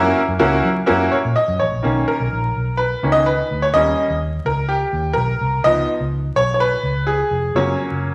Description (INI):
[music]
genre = uptempo 1960s-style soul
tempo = 126 BPM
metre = 4/4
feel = straight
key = B major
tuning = A4 = 440 Hz
[part]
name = bright upright piano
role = accompaniment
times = 0.0-8.1 s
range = D#3 to D#5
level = -20 LUFS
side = equal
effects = none
[part]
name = vintage muted fingered electric bass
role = bass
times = 0.0-8.1 s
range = E#1 to F#3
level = -25 LUFS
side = equal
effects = none
[sound]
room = wet large studio reverb, RT60 1.3 s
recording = vinyl crackle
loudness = -18 LUFS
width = mono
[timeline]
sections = 0.0-1.8 A section; 1.8-8.1 B section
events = upright piano solo 1.8-8.1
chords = 0.0 F#7; 1.8 Bmaj7; 3.7 D#7; 5.7 C#7; 7.6 F#